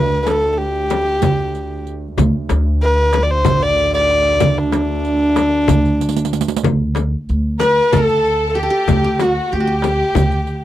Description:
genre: Turkish makam ensemble.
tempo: 188 BPM (eighths).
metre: 7/8.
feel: straight.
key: D makam hicaz.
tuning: A4 = 440 Hz.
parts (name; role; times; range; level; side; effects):
warm kamancheh; melody; 0.0-10.6 s; D4 to D5; -16 LUFS; left 1 dB; none.
warm double bass; drone; 0.0-6.7 s; D2; -24 LUFS; right 2 dB; none.
darbuka; percussion; 0.3-10.6 s; none; -21 LUFS; right 4 dB; none.
frame drum; percussion; 0.3-10.3 s; none; -21 LUFS; left 7 dB; none.
riq; percussion; 0.3-10.6 s; none; -24 LUFS; right 11 dB; none.
upright bass; bass; 2.2-10.6 s; A1 to D2; -19 LUFS; equal; none.
qanun; second line; 7.6-10.6 s; F#4 to B4-40c; -24 LUFS; right 3 dB; none.
rich studio violin section; second line; 7.6-10.6 s; F#4 to B4-40c; -23 LUFS; left 3 dB; none.
room: little or no reverb.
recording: dry, close 1970s-style studio recording.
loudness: -14 LUFS.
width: side -13 dB against mid.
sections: 0.0-6.6 A section; 6.6-10.6 B section.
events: drum fill 6.0-6.6.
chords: none.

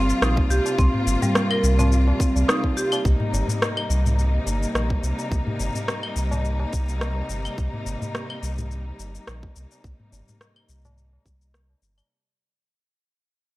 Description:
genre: organic downtempo.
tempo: 106 BPM.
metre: 4/4.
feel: swing 54% on 16ths.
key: C minor.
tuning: A4 = 439 Hz.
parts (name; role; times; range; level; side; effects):
clear symphonic string section; sustained chords; 0.0-12.1 s; C3 to F4; -29 LUFS; left 1 dB; sidechain pumping.
marimba with hard mallets; arpeggios; 0.0-2.9 s; G3 to Bb4; -24 LUFS; right 1 dB; analog delay.
warm sub bass; bass; 0.0-12.0 s; G1 to C2; -22 LUFS; equal; none.
electronic shaker, rim click and claves; drums; 0.1-12.1 s; none; -27 LUFS; left 1 dB; studio reverb.
electronic kick drum; drums; 0.4-11.4 s; none; -23 LUFS; equal; studio reverb.
tabla; percussion; 0.4-12.1 s; none; -31 LUFS; left 1 dB; none.
room: small room reverb.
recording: dry, gritty hardware recording.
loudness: -20 LUFS.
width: side -18 dB against mid.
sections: 0.0-3.0 A section; 3.0-12.1 B section.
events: fade-out 3.0-12.1.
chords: 0.0 C7(no3); 3.0 Cm7.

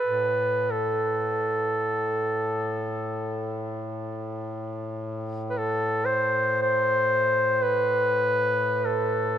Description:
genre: caucasian folk, Caucasian lament.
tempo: free time.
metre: none.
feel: none.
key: A minor.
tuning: A4 = 440 Hz.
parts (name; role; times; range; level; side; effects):
breathy duduk; melody; 0.0-9.4 s; A4 to C5; -24 LUFS; equal; none.
warm duduk; drone; 0.0-9.4 s; A2; -32 LUFS; left 1 dB; none.
room: wet cathedral reverb, RT60 5.8 s.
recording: none.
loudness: -23 LUFS.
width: side -10 dB against mid.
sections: 0.0-9.4 A section.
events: none.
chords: none.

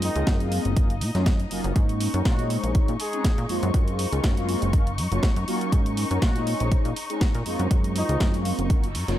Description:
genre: filtered disco house.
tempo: 121 BPM.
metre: 4/4.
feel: swing 54% on 16ths.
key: unclear.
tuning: A4 = 442 Hz.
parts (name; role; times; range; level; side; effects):
dark horn section; melody; 0.0-8.3 s; Eb3 to Ab4; -33 LUFS; left 1 dB; sidechain pumping, dub echo.
mellow synth brass; accompaniment; 0.0-9.2 s; Gb3 to F4; -29 LUFS; equal; chorus, phaser, sidechain pumping.
muted studio string section; sustained chords; 0.0-9.2 s; Eb4 to Db6; -34 LUFS; left 3 dB; sidechain pumping.
plucky analog bass; bass; 0.0-9.2 s; Gb1 to Bb2; -26 LUFS; equal; sidechain pumping.
house drum kit; drums; 0.0-9.2 s; hi-hat, snare drum; -32 LUFS; right 1 dB; sidechain pumping on hats, sidechain pumping on cymbals.
electronic kick drum; drums; 0.3-8.8 s; none; -22 LUFS; equal; none.
reverse cymbal; sound effects; 8.8-9.2 s; none; -40 LUFS; right 5 dB; none.
room: little or no reverb.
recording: none.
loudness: -21 LUFS.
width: side -12 dB against mid.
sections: 0.0-9.2 A section.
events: reverse cymbal 8.8-9.2.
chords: 0.0 Gbmaj9#11; 0.8 Ebm9/Gb; 1.8 Ab9sus4; 2.5 Bbm11; 3.5 Gbmaj9#11; 4.7 Ebm9/Gb; 5.7 Ab9sus4; 6.5 Bbm11; 7.5 Gbmaj9#11.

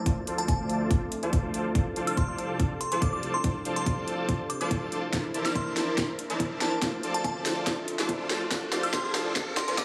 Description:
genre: future bass.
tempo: 142 BPM.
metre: 4/4.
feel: half-time.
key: F major.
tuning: A4 = 441 Hz.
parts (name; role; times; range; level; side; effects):
airy breathy pad; sustained chords; 0.0-9.8 s; C3 to E5; -41 LUFS; equal; chorus, sidechain pumping.
concert harp; arpeggios; 0.0-9.8 s; D4 to D5; -41 LUFS; equal; none.
saturated sub bass; bass; 0.0-9.8 s; Bb1 to D2; -43 LUFS; equal; none.
dense compressed supersaw; riff; 0.1-9.8 s; E4 to C6; -35 LUFS; equal; sidechain pumping, low-pass filter, dub echo.
electronic kick drum; drums; 0.1-9.8 s; none; -30 LUFS; equal; overdrive.
trap drum kit; drums; 0.1-9.8 s; hi-hat, snare drum; -35 LUFS; equal; overdrive, high-pass filter on snare, high-pass filter on hats.
glassy synth bell; melody; 0.4-9.8 s; A5 to F6; -36 LUFS; equal; chorus, sidechain pumping, dub echo.
riser; sound effects; 6.7-9.8 s; none; -42 LUFS; equal; none.
room: moderate lush hall reverb, RT60 1.9 s.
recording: high-pass filter, small room ambience.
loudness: -29 LUFS.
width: mono.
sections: 0.0-9.8 A section.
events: build-up 0.0-9.8; filter sweep on supersaw synth 0.0-9.8; filter sweep on analog synth pad 0.0-9.8; filter sweep 0.0-9.8; drum fill 5.1-9.8.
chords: 0.1 Dm7; 1.8 F6/C; 5.1 Bbmaj9#11; 6.8 Dm7; 8.5 F6/C.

